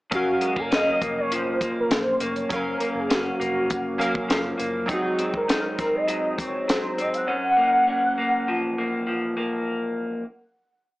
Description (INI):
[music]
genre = indie pop, bedroom pop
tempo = 101 BPM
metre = 4/4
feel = straight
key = Gb lydian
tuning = A4 = 440 Hz
[part]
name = warm velvety synth lead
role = melody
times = 0.1-9.1 s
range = Gb4 to Gb5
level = -24 LUFS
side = equal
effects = ensemble chorus
[part]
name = electric guitar through a small old amp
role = accompaniment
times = 0.1-10.2 s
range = Gb2 to Eb4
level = -26 LUFS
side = left 1 dB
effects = lush chorus, warbly pitch drift
[part]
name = warm analog keys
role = accompaniment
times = 0.1-7.3 s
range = Gb3 to F5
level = -30 LUFS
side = right 1 dB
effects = chorus, cassette tape
[part]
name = vintage muted fingered electric bass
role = bass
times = 0.1-4.8 s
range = F1 to Bb1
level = -44 LUFS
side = equal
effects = none
[part]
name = compact cocktail drum kit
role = drums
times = 0.1-7.3 s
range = hi-hat, kick drum, snare drum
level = -26 LUFS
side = equal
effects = none
[sound]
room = moderate studio reverb, RT60 0.6 s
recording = small speaker sound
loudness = -22 LUFS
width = side -19 dB against mid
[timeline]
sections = 0.1-9.7 A section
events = none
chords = 0.1 Gbmaj7; 4.9 Ab7; 7.3 Gbmaj7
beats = | 0.12 0.72 1.31 1.91 | 2.50 3.10 3.70 4.29 | 4.89 5.49 6.09 6.68 | 7.28 7.88 8.47 9.07